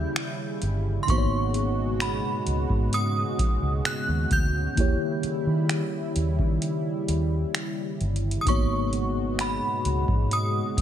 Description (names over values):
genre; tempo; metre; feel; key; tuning
contemporary R&B; 65 BPM; 4/4; straight; G# minor; A4 = 440 Hz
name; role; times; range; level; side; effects
synth chime; melody; 0.0-10.8 s; B5 to G6; -30 LUFS; right 1 dB; ensemble chorus, tape echo
mellow tine electric piano; accompaniment; 0.0-10.8 s; G#2 to C#5; -31 LUFS; left 1 dB; medium stereo tremolo
warm analog pad; sustained chords; 0.0-10.8 s; B2 to F#4; -32 LUFS; right 1 dB; chorus
vintage muted fingered electric bass; bass; 0.0-10.8 s; G1 to D#3; -27 LUFS; equal; none
booming analog drum machine; drums; 0.2-10.8 s; finger snaps, hi-hat, kick drum; -26 LUFS; equal; vintage 12-bit sampler grit
room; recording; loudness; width
light reverb; none; -23 LUFS; side -10 dB against mid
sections
0.0-10.8 A section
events
none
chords
0.0 D#7b9; 1.1 G#m11; 4.8 D#7b9; 8.5 G#m11